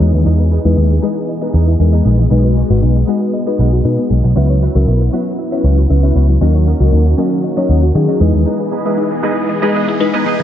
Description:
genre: pop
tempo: 117 BPM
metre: 4/4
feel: straight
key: unclear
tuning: A4 = 437 Hz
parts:
  - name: glassy digital keys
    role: accompaniment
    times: 0.0-10.3 s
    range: F#3 to C#5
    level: -18 LUFS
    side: left 2 dB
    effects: chorus
  - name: supersaw chords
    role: sustained chords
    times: 0.0-10.4 s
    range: D#3 to D#5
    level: -21 LUFS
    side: equal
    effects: none
  - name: mallet-like synth pluck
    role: arpeggios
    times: 0.0-10.4 s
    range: E3 to E5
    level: -22 LUFS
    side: left 5 dB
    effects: chorus, tape echo
  - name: direct-recorded clean electric guitar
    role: riff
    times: 0.0-10.4 s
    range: B3 to E5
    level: -25 LUFS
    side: right 7 dB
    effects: ensemble chorus
  - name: vintage muted picked electric bass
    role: bass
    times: 0.0-8.4 s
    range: G#1 to D#3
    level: -11 LUFS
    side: equal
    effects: none
room: light reverb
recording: dark, warm production, low-pass filter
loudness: -11 LUFS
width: side -10 dB against mid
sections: 0.0-10.4 A section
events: filter sweep 0.0-10.4; break 8.5-10.4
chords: 0.0 Emaj7; 2.3 B6; 4.4 F#7sus4; 6.4 D#m7; 8.2 Emaj7

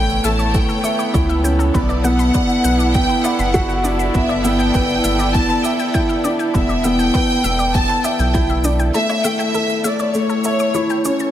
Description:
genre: piano and strings electronica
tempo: 100 BPM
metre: 4/4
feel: straight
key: unclear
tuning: A4 = 441 Hz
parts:
  - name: dark studio violin section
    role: melody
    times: 0.0-11.3 s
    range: C#5 to A5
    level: -21 LUFS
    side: equal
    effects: shimmer reverb
  - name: warm chamber string section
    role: sustained chords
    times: 0.0-11.3 s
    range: B3 to D5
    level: -24 LUFS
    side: right 1 dB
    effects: shimmer reverb
  - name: analog pluck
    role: arpeggios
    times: 0.0-11.3 s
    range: A4 to C#6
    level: -28 LUFS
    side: left 3 dB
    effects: chorus, sidechain pumping, digital delay, shimmer reverb
  - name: felt-muted upright piano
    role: riff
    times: 0.0-11.3 s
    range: A3 to B5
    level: -19 LUFS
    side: equal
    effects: shimmer reverb
  - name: round analog bass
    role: bass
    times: 0.0-8.9 s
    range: E1 to C#2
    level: -20 LUFS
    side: equal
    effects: sidechain pumping
  - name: shaker and woodblock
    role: drums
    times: 0.1-11.3 s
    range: none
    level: -30 LUFS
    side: equal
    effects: overdrive, small room ambience
  - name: electronic kick drum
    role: drums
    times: 0.5-8.5 s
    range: none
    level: -20 LUFS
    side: equal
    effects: overdrive, small room ambience
room: moderate lush hall reverb, RT60 1.7 s, small room ambience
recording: none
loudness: -14 LUFS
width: side -11 dB against mid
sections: 0.0-11.3 A section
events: none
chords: 0.0 A7; 1.7 Bm; 4.1 G6; 6.5 Em7; 8.9 A

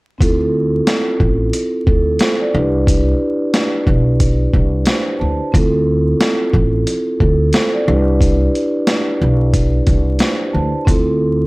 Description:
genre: hip hop, boom-bap hip-hop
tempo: 90 BPM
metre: 4/4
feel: swing 60% on 16ths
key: D dorian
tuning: A4 = 441 Hz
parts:
  - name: vibraphone with soft mallets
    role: accompaniment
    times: 0.2-11.5 s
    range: C4 to A5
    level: -17 LUFS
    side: right 1 dB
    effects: cassette tape, high-pass filter, low-pass filter
  - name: upright bass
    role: bass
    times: 0.2-11.5 s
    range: A1 to D2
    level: -16 LUFS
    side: equal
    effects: none
  - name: boom bap sampler-style drum kit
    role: drums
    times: 0.2-11.1 s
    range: hi-hat, kick drum, snare drum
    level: -16 LUFS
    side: equal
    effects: none
room: little or no reverb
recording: dry, gritty hardware recording, vinyl crackle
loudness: -13 LUFS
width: side -24 dB against mid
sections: 0.2-11.5 A section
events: vibraphone fill 4.5-5.5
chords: 0.2 Dm7; 2.5 Cmaj7; 5.5 Dm7; 7.9 Cmaj7; 10.9 Dm7

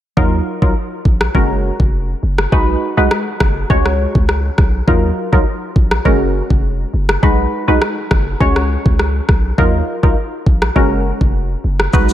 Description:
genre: dancehall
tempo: 102 BPM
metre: 4/4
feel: straight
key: Eb minor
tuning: A4 = 441 Hz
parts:
  - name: wavetable chord stab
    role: accompaniment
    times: 0.2-12.1 s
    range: Gb3 to Db5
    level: -18 LUFS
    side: equal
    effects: lush chorus
  - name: warm 808-style bass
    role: bass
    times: 0.2-12.1 s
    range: F1 to Eb2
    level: -17 LUFS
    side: equal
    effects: none
  - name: island pop drum kit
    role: drums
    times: 0.2-12.1 s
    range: kick drum, rim click, shaker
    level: -15 LUFS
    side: equal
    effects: none
room: light reverb, digital ambience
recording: none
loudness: -12 LUFS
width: side -12 dB against mid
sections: 0.2-12.1 A section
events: none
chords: 0.2 Ebmadd9; 1.3 Gbadd9; 2.5 B6; 3.7 Dbsus4; 4.9 Ebmadd9; 6.1 Gbadd9; 7.2 B6; 8.4 Dbsus4; 9.6 Ebmadd9; 10.8 Gbadd9

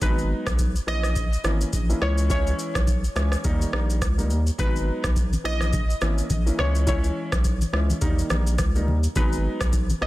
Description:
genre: afrobeats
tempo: 105 BPM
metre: 4/4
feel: swing 58% on 16ths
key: G# minor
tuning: A4 = 443 Hz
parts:
  - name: glassy wavetable pluck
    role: melody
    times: 0.0-10.1 s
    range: B4 to D#5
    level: -32 LUFS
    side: left 1 dB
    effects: chorus, tape echo
  - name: warm baby grand piano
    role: accompaniment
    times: 0.0-10.1 s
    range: D#3 to E4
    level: -30 LUFS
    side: equal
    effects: none
  - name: saturated sub bass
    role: bass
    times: 0.0-10.1 s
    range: G#1 to D#2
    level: -24 LUFS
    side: equal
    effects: none
  - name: booming analog drum machine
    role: drums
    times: 0.0-10.1 s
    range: kick drum, rim click, shaker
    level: -25 LUFS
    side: equal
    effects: vintage 12-bit sampler grit, soft clipping on snare
  - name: congas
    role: percussion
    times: 4.6-10.0 s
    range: none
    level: -32 LUFS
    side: left 2 dB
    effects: none
room: little or no reverb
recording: dense, heavily limited modern master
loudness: -21 LUFS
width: side -17 dB against mid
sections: 0.0-10.1 A section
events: none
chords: 0.0 G#m7; 0.9 A#dim; 2.0 C#m; 3.4 D#; 4.6 G#m7; 5.4 A#dim; 6.6 C#m; 8.0 D#; 9.2 G#m7

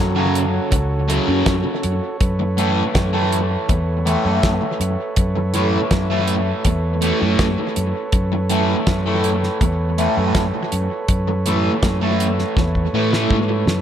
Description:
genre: psychedelic rock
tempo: 81 BPM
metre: 4/4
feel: straight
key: unclear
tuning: A4 = 440 Hz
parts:
  - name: combo organ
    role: sustained chords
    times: 0.0-13.8 s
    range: F#4 to C#5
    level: -26 LUFS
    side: right 3 dB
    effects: none
  - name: fingered electric bass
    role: bass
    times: 0.0-13.8 s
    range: C#2 to A2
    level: -21 LUFS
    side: equal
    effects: none
  - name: fuzz guitar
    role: riff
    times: 0.2-13.5 s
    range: F#2 to A3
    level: -20 LUFS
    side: equal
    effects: distortion, phaser, analog delay
  - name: damped 70s drum kit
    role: drums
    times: 0.4-13.8 s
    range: hi-hat, kick drum, snare drum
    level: -21 LUFS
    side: equal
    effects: analog delay
room: light reverb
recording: echo-heavy mix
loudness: -16 LUFS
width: side -9 dB against mid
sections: 0.0-13.8 A section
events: drum fill 12.6-13.8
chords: 0.0 F#m; 2.2 Aadd9

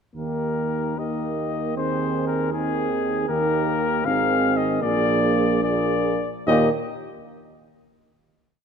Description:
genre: classical, brass quintet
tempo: 71-79 BPM (dotted quarters)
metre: 6/8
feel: rubato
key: Eb major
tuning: A4 = 440 Hz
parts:
  - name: mellow cornet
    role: melody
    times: 0.2-6.7 s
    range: Ab4 to F5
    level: -25 LUFS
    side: left 7 dB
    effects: none
  - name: mellow flugelhorn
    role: second line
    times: 0.2-6.7 s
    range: G4 to Ab4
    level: -30 LUFS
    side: right 9 dB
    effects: none
  - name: mellow French horn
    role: accompaniment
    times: 0.2-6.7 s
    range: Bb3 to C4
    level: -26 LUFS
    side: left 1 dB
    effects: none
  - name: warm trombone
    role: accompaniment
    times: 0.2-6.7 s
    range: Bb2 to Eb3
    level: -30 LUFS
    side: right 5 dB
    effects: none
  - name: warm tuba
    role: bass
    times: 0.2-6.7 s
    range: Ab1 to Eb2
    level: -27 LUFS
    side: right 3 dB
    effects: none
room: moderate concert hall reverb, RT60 1.9 s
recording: none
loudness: -20 LUFS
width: side -6 dB against mid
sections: 0.2-6.5 A section; 6.5-8.1 final chord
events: none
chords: 0.2 Eb; 1.8 Ab/Eb; 3.3 Eb; 4.1 Ab; 4.8 Bb7; 6.5 Eb5

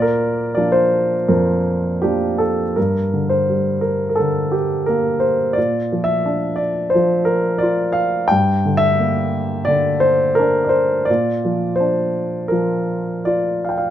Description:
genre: classical, lyrical solo piano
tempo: 87 BPM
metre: 4/4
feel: uneven beats, rubato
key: Bb lydian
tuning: A4 = 441 Hz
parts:
  - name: warm grand piano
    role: solo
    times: 0.0-13.9 s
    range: F2 to G5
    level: -16 LUFS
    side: equal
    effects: none
room: light reverb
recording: none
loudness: -16 LUFS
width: side -11 dB against mid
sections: 0.0-2.8 A section; 2.8-13.9 A section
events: none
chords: 0.0 Bb; 2.8 Gm; 5.6 Bb; 8.3 Gm; 11.1 Bb

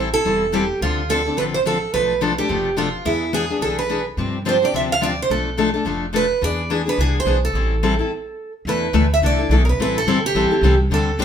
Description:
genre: acoustic string swing (jazz manouche)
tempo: 214 BPM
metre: 4/4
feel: swing 58% on 8ths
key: A minor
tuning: A4 = 439 Hz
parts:
  - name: picked steel-string acoustic guitar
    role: accompaniment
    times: 0.0-11.2 s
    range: B2 to A4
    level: -21 LUFS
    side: left 4 dB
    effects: none
  - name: upright bass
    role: bass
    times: 0.0-11.2 s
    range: E1 to G2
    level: -22 LUFS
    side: equal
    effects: none
  - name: picked acoustic archtop guitar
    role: melody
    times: 0.1-11.2 s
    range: E4 to F5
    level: -21 LUFS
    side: right 4 dB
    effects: none
room: moderate studio reverb, RT60 0.8 s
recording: band playing live in one room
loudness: -17 LUFS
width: side -8 dB against mid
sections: 0.0-8.7 A section; 8.7-11.2 B section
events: stop 8.1-8.7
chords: 0.0 Am7; 0.8 Dm7; 1.9 Bm7b5; 3.1 E7; 4.2 G7sus4; 5.3 Bm7b5; 6.4 E7; 7.5 Am7; 8.7 E7sus4; 9.8 Am7

